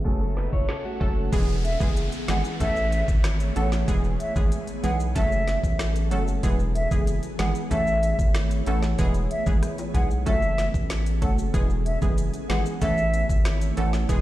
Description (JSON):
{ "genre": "dancehall", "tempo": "94 BPM", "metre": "4/4", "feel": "straight", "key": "E major", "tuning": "A4 = 440 Hz", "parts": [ { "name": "analog pluck", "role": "accompaniment", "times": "0.0-14.2 s", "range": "E3 to A4", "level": "-30 LUFS", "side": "right 2 dB", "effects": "chorus" }, { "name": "ethereal airy pad", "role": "sustained chords", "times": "0.0-14.2 s", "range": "E3 to F#5", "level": "-34 LUFS", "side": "left 1 dB", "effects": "ensemble chorus, built-in reverb, sidechain pumping" }, { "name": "nylon-string guitar", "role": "arpeggios", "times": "0.1-1.3 s", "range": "A3 to C#5", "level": "-33 LUFS", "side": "equal", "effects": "none" }, { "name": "round analog bass", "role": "bass", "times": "0.1-14.2 s", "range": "E1 to B1", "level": "-26 LUFS", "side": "equal", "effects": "none" }, { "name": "island pop drum kit", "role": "drums", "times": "0.1-14.2 s", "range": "crash cymbal, hi-hat, kick drum, rim click, snare drum", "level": "-26 LUFS", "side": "equal", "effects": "none" }, { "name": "maracas and timbales", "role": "percussion", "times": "1.3-14.2 s", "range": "none", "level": "-45 LUFS", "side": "left 4 dB", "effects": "none" }, { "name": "downlifter", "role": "sound effects", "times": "1.3-6.4 s", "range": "none", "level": "-40 LUFS", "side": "equal", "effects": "none" }, { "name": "hollow concert flute", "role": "melody", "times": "1.6-13.9 s", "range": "E5 to F#5", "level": "-29 LUFS", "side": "equal", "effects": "tape echo" } ], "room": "digital ambience", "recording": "played on a big sound system in a bare room, stone room reverb, low-pass filter", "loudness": "-21 LUFS", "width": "side -15 dB against mid", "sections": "0.0-1.3 A section; 1.3-14.2 B section", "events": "filter sweep 0.0-1.3", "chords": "0.1 F#m; 1.3 E; 2.6 A; 3.9 E; 5.2 F#m; 6.4 E; 7.7 A; 9.0 E; 10.3 F#m; 11.5 E; 12.8 A" }